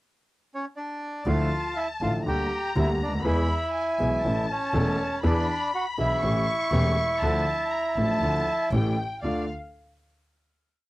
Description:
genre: tango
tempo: 121 BPM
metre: 4/4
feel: rubato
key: D harmonic minor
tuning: A4 = 440 Hz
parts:
  - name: bandoneon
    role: melody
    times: 0.5-9.5 s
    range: C#4 to G5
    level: -27 LUFS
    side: right 1 dB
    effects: cassette tape
  - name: warm studio violin section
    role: second line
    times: 1.3-9.5 s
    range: F5 to C#6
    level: -32 LUFS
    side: left 2 dB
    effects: cassette tape
  - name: clear concert grand piano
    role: accompaniment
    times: 1.3-9.4 s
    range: E1 to A4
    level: -27 LUFS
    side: equal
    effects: cassette tape
  - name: clear double bass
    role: bass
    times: 1.3-9.4 s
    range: E1 to E2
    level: -28 LUFS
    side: equal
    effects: none
room: light reverb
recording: home recording on cassette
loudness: -23 LUFS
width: side -18 dB against mid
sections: 0.0-1.3 pickup bar; 1.3-9.2 A section; 9.2-10.9 final chord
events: none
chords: 0.0 N.C.; 1.3 Dmadd9; 2.3 Gm/D; 3.3 E; 4.2 A; 5.2 E7; 6.2 A7; 7.2 Dm; 8.7 A7; 9.2 Dm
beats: 0.27 0.77 | 1.27 1.76 2.26 2.76 | 3.25 3.75 4.24 4.74 | 5.24 5.73 6.23 6.72 | 7.22 7.72 8.22 8.72 | 9.23

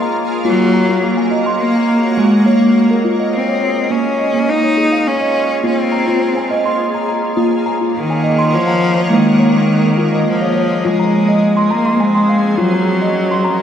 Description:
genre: world meditative, meditative tuned percussion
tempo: 104 BPM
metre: 3/4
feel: straight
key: unclear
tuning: A4 = 440 Hz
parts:
  - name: shimmering ambient pad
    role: sustained chords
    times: 0.0-13.6 s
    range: F3 to Gb5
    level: -19 LUFS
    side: right 1 dB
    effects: chorus, built-in reverb
  - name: steel tongue drum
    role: arpeggios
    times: 0.0-13.6 s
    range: F3 to C6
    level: -16 LUFS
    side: equal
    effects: tape echo
  - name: clear cello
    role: melody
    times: 0.5-13.6 s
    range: Eb3 to Eb4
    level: -16 LUFS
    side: left 1 dB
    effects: tape echo
room: wet scoring stage reverb, RT60 1.7 s, small room ambience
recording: none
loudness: -12 LUFS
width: side -9 dB against mid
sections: 0.0-10.8 A section; 10.8-13.6 B section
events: none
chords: 0.4 Gb; 2.2 Ab; 3.9 Bbm; 5.6 Fm/Bb; 7.4 Gb; 9.1 Ab5; 10.8 Fm; 12.6 Gb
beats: | 0.45 1.02 1.60 | 2.18 2.75 3.33 | 3.91 4.48 5.06 | 5.64 6.22 6.79 | 7.37 7.95 8.53 | 9.11 9.69 10.26 | 10.84 11.42 12.00 | 12.58 13.15

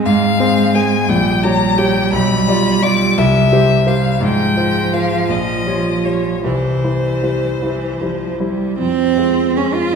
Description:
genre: classical, slow romantic movement for piano trio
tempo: 50-59 BPM (dotted quarters)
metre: 6/8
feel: rubato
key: F minor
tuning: A4 = 438 Hz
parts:
  - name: rich cello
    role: second line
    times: 0.0-10.0 s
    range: E3 to F4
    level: -18 LUFS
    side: right 5 dB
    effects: none
  - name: warm concert grand piano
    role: accompaniment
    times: 0.0-10.0 s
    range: Bb1 to D5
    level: -17 LUFS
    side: left 1 dB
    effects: none
  - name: clear violin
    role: melody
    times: 0.1-8.3 s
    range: C5 to D6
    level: -19 LUFS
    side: left 4 dB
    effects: none
room: wet recital hall reverb, RT60 1.8 s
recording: heard from further back in the room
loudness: -13 LUFS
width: side -6 dB against mid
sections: 0.0-8.8 A section; 8.8-10.0 B section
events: none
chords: 0.0 Fm/Ab; 1.1 Gdim/Bb; 2.1 G7/B; 3.2 C; 4.2 Fm/Ab; 5.3 Gm7b5/Bb; 6.4 C; 8.8 Fm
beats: | 0.05 1.08 | 2.13 3.17 | 4.21 5.29 | 6.44 7.61 | 8.78 9.92

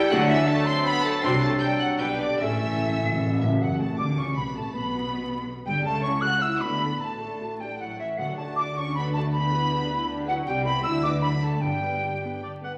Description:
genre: quick classical-period movement for symphony orchestra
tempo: 146-165 BPM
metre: 3/4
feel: rubato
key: D major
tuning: A4 = 440 Hz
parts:
  - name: clear clarinet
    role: second line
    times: 0.0-3.4 s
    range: C#4 to E4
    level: -32 LUFS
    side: equal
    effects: none
  - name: clear oboe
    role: second line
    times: 0.0-3.4, 12.4-12.7 s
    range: A4 to F#5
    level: -36 LUFS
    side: equal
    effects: none
  - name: rich studio violin section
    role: second line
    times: 0.0-12.4 s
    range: D5 to F#6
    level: -37 LUFS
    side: equal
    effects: none
  - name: silver concert flute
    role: second line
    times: 0.0-12.4 s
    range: D5 to F#6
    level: -31 LUFS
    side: equal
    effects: none
  - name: mellow bassoon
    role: accompaniment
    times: 0.0-3.4 s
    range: F#3 to A3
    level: -33 LUFS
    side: equal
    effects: none
  - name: rich studio violin section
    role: melody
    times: 0.1-12.4 s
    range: E5 to C7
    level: -39 LUFS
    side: equal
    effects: none
  - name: dark studio viola section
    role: accompaniment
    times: 0.1-12.8 s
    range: F#3 to C#5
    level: -37 LUFS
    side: equal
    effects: none
  - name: mellow French horn section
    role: sustained chords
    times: 0.1-12.4 s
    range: D3 to F#4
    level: -35 LUFS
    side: equal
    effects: none
  - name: rich studio cello section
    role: bass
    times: 0.1-12.6 s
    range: F#2 to D3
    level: -35 LUFS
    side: equal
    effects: none
  - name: rich studio double bass section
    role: bass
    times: 0.1-12.6 s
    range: F#1 to D2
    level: -34 LUFS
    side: equal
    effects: none
  - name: timpani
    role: percussion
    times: 2.4-3.6, 8.2-8.7, 11.6-12.2 s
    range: G2 to D3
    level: -32 LUFS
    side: equal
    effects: none
room: wet stone room reverb, RT60 1.2 s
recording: vinyl crackle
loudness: -25 LUFS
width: mono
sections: 0.0-3.6 A section; 3.6-12.8 B section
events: timpani fill 2.4-3.6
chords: 0.1 D; 1.2 D7/C; 2.0 G/B; 2.4 A; 3.6 D/F#; 4.7 G; 5.9 A/C#; 6.6 D; 7.0 D/A; 7.8 A; 8.2 D; 9.3 Em7/D; 10.5 C; 10.8 G/D; 11.2 D; 11.6 G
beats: | 0.11 0.49 0.86 | 1.23 1.61 2.00 | 2.40 2.81 3.22 | 3.61 3.99 4.37 | 4.75 5.12 5.49 | 5.85 6.22 6.61 | 7.00 7.40 7.80 | 8.19 8.57 8.96 | 9.34 9.71 10.09 | 10.47 10.85 11.23 | 11.63 12.03 12.44

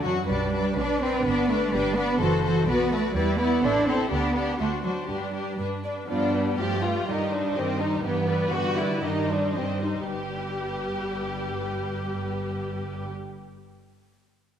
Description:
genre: quick classical-period movement for symphony orchestra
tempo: 107-127 BPM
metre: 2/4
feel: straight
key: G major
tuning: A4 = 437 Hz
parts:
  - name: warm symphonic violin section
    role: melody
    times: 0.0-13.1 s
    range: F#4 to Eb5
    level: -36 LUFS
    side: left 3 dB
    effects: none
  - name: warm chamber violin section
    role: second line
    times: 0.0-13.1 s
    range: B3 to D5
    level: -29 LUFS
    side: left 3 dB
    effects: none
  - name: rich studio viola section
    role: accompaniment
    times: 0.0-13.1 s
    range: Eb3 to B4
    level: -32 LUFS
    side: equal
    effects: none
  - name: warm chamber cello section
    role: bass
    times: 0.0-13.1 s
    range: G2 to D4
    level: -28 LUFS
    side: right 2 dB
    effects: none
  - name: warm chamber double bass section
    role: bass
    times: 0.0-13.1 s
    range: F#1 to G2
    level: -32 LUFS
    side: right 2 dB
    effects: none
room: wet scoring stage reverb, RT60 2.0 s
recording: none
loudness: -23 LUFS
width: side -9 dB against mid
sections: 0.0-6.1 A section; 6.1-10.1 B section; 10.1-12.3 C section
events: slowing down 7.6-10.1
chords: 0.3 G/B; 1.3 G; 2.2 F#m7b5; 2.7 Bm; 3.2 Em7; 3.6 Am; 4.1 G/D; 4.6 D7; 5.1 G; 6.1 G7; 7.1 Cm/G; 8.0 G; 9.0 Cm/G; 10.1 G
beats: | 0.29 0.77 | 1.25 1.73 | 2.20 2.68 | 3.16 3.64 | 4.12 4.60 | 5.10 5.60 | 6.10 6.59 | 7.08 7.56 | 8.04 8.53 | 9.03 9.56 | 10.11 10.66 | 11.22 11.77

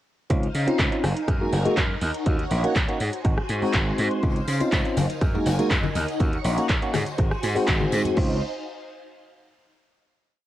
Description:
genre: filtered disco house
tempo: 122 BPM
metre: 4/4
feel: straight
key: Db major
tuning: A4 = 440 Hz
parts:
  - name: bright tine electric piano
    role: accompaniment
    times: 0.3-8.4 s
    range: Ab3 to Gb4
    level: -26 LUFS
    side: equal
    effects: medium stereo tremolo, phaser, vintage 12-bit sampler grit, sidechain pumping, cassette tape
  - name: phased string machine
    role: sustained chords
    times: 0.3-8.4 s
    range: Eb4 to Ab5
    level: -31 LUFS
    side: equal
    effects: ensemble chorus, phaser, sidechain pumping, cassette tape
  - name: gritty slap bass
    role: bass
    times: 0.3-8.4 s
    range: Gb1 to Db3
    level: -26 LUFS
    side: equal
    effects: overdrive, tube saturation, sidechain pumping
  - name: electronic kick drum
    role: drums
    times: 0.3-8.3 s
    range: none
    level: -24 LUFS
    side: equal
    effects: studio reverb, cassette tape
  - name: house drum kit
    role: drums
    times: 0.3-8.3 s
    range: crash cymbal, handclaps, hi-hat, rim click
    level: -30 LUFS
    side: equal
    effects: sidechain pumping on hats, studio reverb, cassette tape, sidechain pumping on cymbals
  - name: tambourine and congas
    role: percussion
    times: 4.2-8.1 s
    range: none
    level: -32 LUFS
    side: left 6 dB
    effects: sidechain pumping on perc
room: light reverb, digital ambience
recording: home recording on cassette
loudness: -21 LUFS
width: side -13 dB against mid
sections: 0.3-8.2 drop; 8.2-10.1 final chord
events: drop 0.3-8.2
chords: 0.3 Dbmaj9; 1.0 Gb69; 2.0 Ebm7; 3.0 Ab7; 4.2 Dbmaj9; 5.0 Gb69; 6.0 Ebm7; 6.9 Ab7; 8.2 Dbmaj9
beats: | 0.30 0.79 1.28 1.77 | 2.27 2.76 3.25 3.74 | 4.23 4.72 5.22 5.71 | 6.20 6.69 7.18 7.67 | 8.17

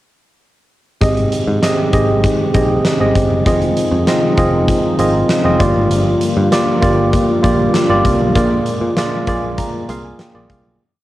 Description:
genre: 1980s-style pop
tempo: 98 BPM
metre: 4/4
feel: straight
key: unclear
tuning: A4 = 439 Hz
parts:
  - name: tine electric piano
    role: accompaniment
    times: 1.0-10.8 s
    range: G2 to Bb5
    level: -15 LUFS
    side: right 2 dB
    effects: overdrive, cassette tape
  - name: warm analog pad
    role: sustained chords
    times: 1.0-10.8 s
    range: C3 to F4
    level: -21 LUFS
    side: left 3 dB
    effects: chorus, cassette tape
  - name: picked electric bass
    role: bass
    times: 1.0-10.8 s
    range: F1 to Bb2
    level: -19 LUFS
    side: left 1 dB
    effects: none
  - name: huge arena drum kit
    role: drums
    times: 1.0-10.6 s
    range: hi-hat, kick drum, snare drum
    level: -19 LUFS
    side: left 1 dB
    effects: cassette tape
room: moderate spring reverb, RT60 2.0 s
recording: home recording on cassette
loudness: -12 LUFS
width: side -15 dB against mid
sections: 1.0-10.8 pre-chorus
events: fade-out 8.4-10.8; tine electric piano fill 9.0-10.8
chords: 1.0 Abmaj7; 3.5 Fm7; 5.6 Gm7; 8.4 Bb7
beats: | 1.01 1.62 2.23 2.85 | 3.46 4.07 4.68 5.30 | 5.91 6.52 7.13 7.75 | 8.36 8.97 9.58 10.19

